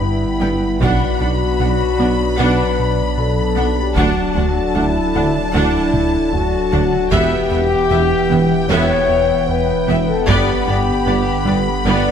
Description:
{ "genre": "cinematic, hybrid orchestral and electronic film score", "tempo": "76 BPM", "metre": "4/4", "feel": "straight", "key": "E minor", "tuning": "A4 = 439 Hz", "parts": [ { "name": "warm studio violin section", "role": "melody", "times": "0.0-12.1 s", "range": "G5 to B5", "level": "-26 LUFS", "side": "left 4 dB", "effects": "none" }, { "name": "hollow soft pad", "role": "sustained chords", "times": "0.0-12.1 s", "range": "D3 to G5", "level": "-25 LUFS", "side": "right 1 dB", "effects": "chorus" }, { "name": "mellow French horn section", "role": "sustained chords", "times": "0.0-12.1 s", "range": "D4 to D5", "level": "-19 LUFS", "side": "left 4 dB", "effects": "none" }, { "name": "warm trombone section", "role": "sustained chords", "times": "0.0-12.1 s", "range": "D3 to D4", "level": "-25 LUFS", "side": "right 4 dB", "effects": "none" }, { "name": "rubbery square bass", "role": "riff", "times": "0.0-12.1 s", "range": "D2 to B3", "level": "-22 LUFS", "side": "right 2 dB", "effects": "none" }, { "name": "warm sub bass", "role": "bass", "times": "0.0-12.1 s", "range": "D1 to B1", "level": "-25 LUFS", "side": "equal", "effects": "none" }, { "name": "warm symphonic violin section", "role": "second line", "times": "0.4-12.1 s", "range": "D5 to G5", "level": "-26 LUFS", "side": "left 2 dB", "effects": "none" }, { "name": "bright symphonic viola section", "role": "accompaniment", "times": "0.4-12.1 s", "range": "B3 to D4", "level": "-25 LUFS", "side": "right 2 dB", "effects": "none" }, { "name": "mellow tuba", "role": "bass", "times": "0.4-12.0 s", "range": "E1 to D2", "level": "-26 LUFS", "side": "right 4 dB", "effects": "none" }, { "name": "rich symphonic cello section", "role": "bass", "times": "0.4-11.9 s", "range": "D2 to B2", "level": "-26 LUFS", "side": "right 3 dB", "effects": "none" }, { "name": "rich symphonic double bass section", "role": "bass", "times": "0.4-11.9 s", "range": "E1 to D2", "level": "-26 LUFS", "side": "right 3 dB", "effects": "none" }, { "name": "taiko ensemble", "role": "drums", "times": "0.8-11.0 s", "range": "none", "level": "-25 LUFS", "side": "equal", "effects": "none" } ], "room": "wet scoring stage reverb, RT60 2.1 s", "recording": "none", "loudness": "-14 LUFS", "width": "side -8 dB against mid", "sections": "0.0-12.1 A section", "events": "drum fill 5.9-7.1", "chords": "0.0 G; 0.8 Bm; 4.0 D; 7.1 Em; 10.3 G", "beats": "0.02 | 0.81 1.59 2.38 3.17 | 3.96 4.75 5.54 6.33 | 7.12 7.91 8.70 9.49 | 10.28 11.07 11.86" }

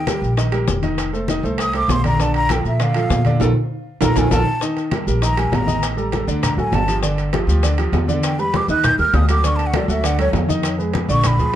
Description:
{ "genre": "Afro-Cuban jazz", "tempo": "199 BPM", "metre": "4/4", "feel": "straight", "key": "unclear", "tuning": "A4 = 443 Hz", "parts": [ { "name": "breathy mellow concert flute", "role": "melody", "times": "0.0-11.6 s", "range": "Db5 to G6", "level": "-22 LUFS", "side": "equal", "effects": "tape echo" }, { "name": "upright bass", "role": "bass", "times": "0.0-11.5 s", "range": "F1 to Bb2", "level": "-20 LUFS", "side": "equal", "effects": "none" }, { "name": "warm baby grand piano", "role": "accompaniment", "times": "0.1-11.6 s", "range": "D3 to Eb5", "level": "-22 LUFS", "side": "right 2 dB", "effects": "none" }, { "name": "bongos", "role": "percussion", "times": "0.1-11.5 s", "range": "none", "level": "-29 LUFS", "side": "left 6 dB", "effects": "none" }, { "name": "congas", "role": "percussion", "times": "0.1-11.5 s", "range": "none", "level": "-25 LUFS", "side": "left 3 dB", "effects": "none" }, { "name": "maracas", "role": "percussion", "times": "0.1-11.5 s", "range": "none", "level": "-32 LUFS", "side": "left 7 dB", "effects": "none" }, { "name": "timbales", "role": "percussion", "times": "0.1-11.4 s", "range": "none", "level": "-27 LUFS", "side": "right 5 dB", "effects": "none" } ], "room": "light reverb", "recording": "dark, warm production", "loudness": "-16 LUFS", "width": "side -11 dB against mid", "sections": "0.0-4.6 A section; 4.6-11.6 A section", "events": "flute solo 0.0-11.6; drum fill 3.4-4.6; band accent 3.4-4.6", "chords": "0.0 Ebadd9; 1.0 F7; 2.2 Bbmaj7; 4.6 Eb; 5.8 Ebmaj7#11/A; 6.4 D; 7.0 G5; 8.2 Em7; 8.8 Eb; 9.4 D; 10.6 Fm7b5", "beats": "0.07 0.38 0.68 | 0.98 1.29 1.59 1.90 | 2.20 2.50 2.80 3.11 | 3.41 3.71 4.01 4.32 | 4.62 4.92 5.22 5.53 | 5.83 6.13 6.43 6.73 | 7.03 7.33 7.64 7.94 | 8.24 8.54 8.84 9.14 | 9.44 9.74 10.04 10.34 | 10.64 10.94 11.24 11.54" }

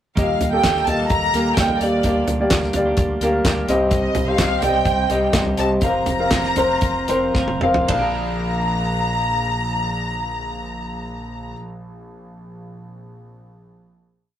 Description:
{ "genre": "piano-driven pop", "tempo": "109-128 BPM", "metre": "4/4", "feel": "straight", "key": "Bb major", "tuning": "A4 = 440 Hz", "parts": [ { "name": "warm studio violin section", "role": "melody", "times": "0.2-11.5 s", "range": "D5 to Bb5", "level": "-23 LUFS", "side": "right 1 dB", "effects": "none" }, { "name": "warm concert grand piano", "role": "accompaniment", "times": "0.2-14.4 s", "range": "Bb1 to F5", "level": "-22 LUFS", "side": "left 1 dB", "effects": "none" }, { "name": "twelve-string electric guitar", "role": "riff", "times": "0.2-11.7 s", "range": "Bb2 to Bb4", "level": "-29 LUFS", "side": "right 3 dB", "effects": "spring reverb" }, { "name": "mellow fretless electric bass", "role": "bass", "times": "0.2-11.5 s", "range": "F1 to Eb2", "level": "-27 LUFS", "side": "equal", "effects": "none" }, { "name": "damped 70s drum kit", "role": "drums", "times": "0.2-8.0 s", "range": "handclaps, hi-hat, kick drum, ride cymbal, snare drum, toms", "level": "-22 LUFS", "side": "equal", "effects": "none" } ], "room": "wet small room reverb, RT60 0.5 s", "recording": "rough rehearsal-room recording", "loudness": "-17 LUFS", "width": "side -10 dB against mid", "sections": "0.2-7.9 pre-chorus; 7.9-12.3 final chord", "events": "slowing down 3.9-7.9; drum fill 7.4-7.9", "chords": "0.2 Eb; 2.0 Gm/D; 3.7 Cm; 5.8 Fsus4; 7.9 Bb", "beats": "| 0.17 0.64 1.11 1.58 | 2.04 2.51 2.98 3.45 | 3.92 4.38 4.86 5.34 | 5.82 6.32 6.83 7.36 | 7.90 8.45 9.00 9.55 | 10.10 10.65 11.20 11.75" }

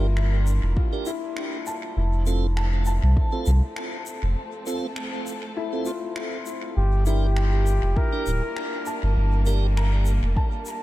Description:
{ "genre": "ambient dub", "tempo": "100 BPM", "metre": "4/4", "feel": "swing 53% on 16ths", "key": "G dorian", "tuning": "A4 = 440 Hz", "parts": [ { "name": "warm studio string section", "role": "sustained chords", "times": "0.0-10.8 s", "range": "F3 to Bb4", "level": "-36 LUFS", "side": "equal", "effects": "none" }, { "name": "felt-muted upright piano", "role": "arpeggios", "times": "0.0-10.8 s", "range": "E4 to Bb5", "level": "-33 LUFS", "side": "left 4 dB", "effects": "dub echo" }, { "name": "tonewheel organ", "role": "stabs", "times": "0.0-9.7 s", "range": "C4 to Bb4", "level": "-34 LUFS", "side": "right 5 dB", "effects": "slow rotary speaker, low-pass filter, dub echo" }, { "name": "warm sub bass", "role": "bass", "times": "0.0-10.3 s", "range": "D1 to C2", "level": "-20 LUFS", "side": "equal", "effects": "tube saturation" }, { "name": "finger snaps and shaker", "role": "drums", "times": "0.2-10.8 s", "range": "none", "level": "-37 LUFS", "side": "left 2 dB", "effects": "dub echo" }, { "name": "electronic kick drum", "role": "drums", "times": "0.8-3.3, 8.0-10.5 s", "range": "none", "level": "-23 LUFS", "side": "equal", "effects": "none" }, { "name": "trumpet with bucket mute", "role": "melody", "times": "6.8-8.9 s", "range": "G4 to Bb4", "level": "-31 LUFS", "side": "equal", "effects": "dub echo" } ], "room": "small room ambience", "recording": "echo-heavy mix", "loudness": "-22 LUFS", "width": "side -16 dB against mid", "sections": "0.0-10.8 A section", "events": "break 4.4-6.8", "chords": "0.0 Gm; 2.0 F; 6.8 Gm", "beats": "0.17 0.77 1.37 | 1.97 2.57 3.17 3.77 | 4.37 4.97 5.57 6.17 | 6.77 7.37 7.97 8.57 | 9.17 9.77 10.37" }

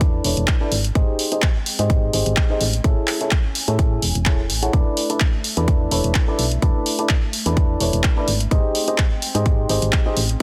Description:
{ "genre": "piano house", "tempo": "127 BPM", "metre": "4/4", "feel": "swing 54% on 16ths", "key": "unclear", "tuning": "A4 = 439 Hz", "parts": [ { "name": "clear baby grand piano", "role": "riff", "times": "0.0-10.2 s", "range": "D4 to G#5", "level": "-26 LUFS", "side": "equal", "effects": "sidechain pumping, low-pass filter, tape echo" }, { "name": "solid FM bass", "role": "bass", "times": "0.0-10.4 s", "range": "E1 to A2", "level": "-24 LUFS", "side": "equal", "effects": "sidechain pumping" }, { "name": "electronic kick drum", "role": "drums", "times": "0.0-10.0 s", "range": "none", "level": "-21 LUFS", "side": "equal", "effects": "none" }, { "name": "punchy analog drum machine", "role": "drums", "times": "0.0-10.4 s", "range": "handclaps, hi-hat", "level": "-26 LUFS", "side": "equal", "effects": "overdrive" }, { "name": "warbly tape-like pad", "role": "texture", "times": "0.2-10.4 s", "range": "G#3 to G#5", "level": "-39 LUFS", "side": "equal", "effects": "none" } ], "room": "digital ambience", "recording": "dense, heavily limited modern master", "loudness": "-19 LUFS", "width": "mono", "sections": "0.0-10.4 A section", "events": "none", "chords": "0.0 E7sus4; 0.7 G#maj7; 2.6 Amaj7; 4.7 E7sus4; 8.3 G#maj7", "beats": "0.01 0.48 | 0.95 1.43 1.90 2.37 | 2.84 3.32 3.79 4.26 | 4.73 5.21 5.68 6.15 | 6.62 7.10 7.57 8.04 | 8.51 8.98 9.46 9.93 | 10.40" }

